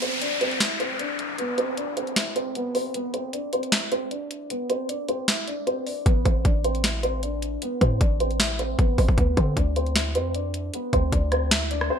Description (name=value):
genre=hip hop, trap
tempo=154 BPM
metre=4/4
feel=half-time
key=unclear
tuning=A4 = 438 Hz
part: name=felt-muted upright piano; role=melody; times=0.0-12.0 s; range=B3 to E5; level=-27 LUFS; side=equal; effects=wide subtle chorus, low-pass filter, ping-pong delay
part: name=trap drum kit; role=drums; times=0.0-11.9 s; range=hi-hat, kick drum, rim click, snare drum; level=-23 LUFS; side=equal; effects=gated reverb
part: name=downlifter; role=sound effects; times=0.0-2.9 s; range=none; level=-30 LUFS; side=left 2 dB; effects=none
part: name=warm 808-style bass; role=bass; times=6.1-11.9 s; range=A1 to D3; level=-25 LUFS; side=equal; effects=none
room=light reverb, digital ambience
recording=bright 1980s-style digital production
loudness=-22 LUFS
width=side -8 dB against mid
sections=0.0-12.0 A section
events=break 0.0-6.1; filter sweep on felt piano 0.0-12.0; kick muted 4.5-6.1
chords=0.0 Cmaj9/B; 6.1 Am; 9.2 Dm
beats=0.22 0.60 0.99 | 1.38 1.77 2.16 2.55 | 2.94 3.33 3.72 4.11 | 4.50 4.89 5.28 5.67 | 6.06 6.45 6.84 7.23 | 7.62 8.01 8.40 8.79 | 9.18 9.57 9.96 10.35 | 10.73 11.12 11.51 11.90